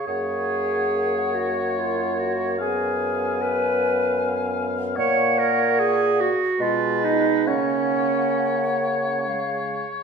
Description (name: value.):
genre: classical, slow romantic movement for wind quintet.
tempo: 64-77 BPM.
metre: 3/4.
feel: rubato.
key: F# major.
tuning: A4 = 440 Hz.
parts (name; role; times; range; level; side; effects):
hollow concert flute; melody; 0.0-9.9 s; D#5 to Ab5; -28 LUFS; left 8 dB; none.
warm oboe; second line; 0.0-10.0 s; B4 to F5; -30 LUFS; left 2 dB; none.
warm clarinet; accompaniment; 0.0-9.2 s; C#4 to C#5; -23 LUFS; right 4 dB; none.
mellow French horn; accompaniment; 0.1-9.9 s; G#3 to B3; -30 LUFS; equal; none.
mellow bassoon; bass; 0.1-9.9 s; F#2 to C#3; -27 LUFS; equal; none.
room: wet recital hall reverb, RT60 1.4 s.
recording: minimal, uncompressed stereo recording.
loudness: -20 LUFS.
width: side -6 dB against mid.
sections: 0.1-10.0 A section.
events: none.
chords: 0.1 F#; 2.6 Fdim/F#; 5.0 F#/A#; 6.6 G#m/B; 7.5 F#/C#; 9.3 C#.